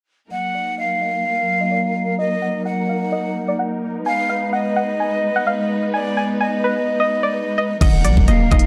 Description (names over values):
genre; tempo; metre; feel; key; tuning
hip hop, trap; 128 BPM; 4/4; half-time; Eb harmonic minor; A4 = 440 Hz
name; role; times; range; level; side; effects
string-like resonator pluck; melody; 0.3-8.7 s; Cb5 to Ab5; -26 LUFS; equal; chorus, low-pass filter
breathy mellow jazz flute; second line; 0.3-8.7 s; D5 to Gb5; -24 LUFS; equal; delay
warm studio string section; sustained chords; 0.3-8.7 s; Gb3 to Cb5; -26 LUFS; equal; low-pass filter
mallet-like synth pluck; accompaniment; 7.8-8.7 s; Eb3 to Eb4; -23 LUFS; equal; chorus, low-pass filter
clean 808-style bass; bass; 7.8-8.7 s; Eb1 to Bb1; -19 LUFS; equal; none
pop drum kit; drums; 7.8-8.7 s; crash cymbal, hi-hat, kick drum; -18 LUFS; equal; none
impact; sound effects; 7.9-8.7 s; none; -25 LUFS; equal; none
room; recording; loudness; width
light reverb; dark, warm production; -20 LUFS; mono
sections
0.3-7.8 A section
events
filter sweep 0.3-7.8; impact 7.8-8.7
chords
0.3 Ebm; 4.1 Abm; 7.8 Ebm